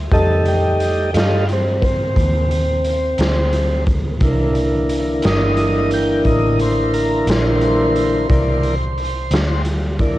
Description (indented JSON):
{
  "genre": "slow blues",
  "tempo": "59 BPM (dotted quarters)",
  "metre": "12/8",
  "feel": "straight",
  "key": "C mixolydian",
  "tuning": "A4 = 439 Hz",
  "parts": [
    { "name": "vintage muted fingered electric bass", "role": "bass", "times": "0.0-10.2 s", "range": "G1 to G2", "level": "-20 LUFS", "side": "equal", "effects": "none" },
    { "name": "tonewheel organ", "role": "sustained chords", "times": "0.1-10.2 s", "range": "D3 to G5", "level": "-18 LUFS", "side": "equal", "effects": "slow rotary speaker, cassette tape" },
    { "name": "raw garage drum kit", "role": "drums", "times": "0.1-10.2 s", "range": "hi-hat, kick drum, snare drum", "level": "-21 LUFS", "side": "equal", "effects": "cassette tape" }
  ],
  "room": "studio reverb",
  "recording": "home recording on cassette",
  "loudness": "-14 LUFS",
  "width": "side -15 dB against mid",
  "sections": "0.0-10.2 A section",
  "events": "tonewheel organ solo 0.0-10.2",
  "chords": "0.1 F9; 4.2 C9"
}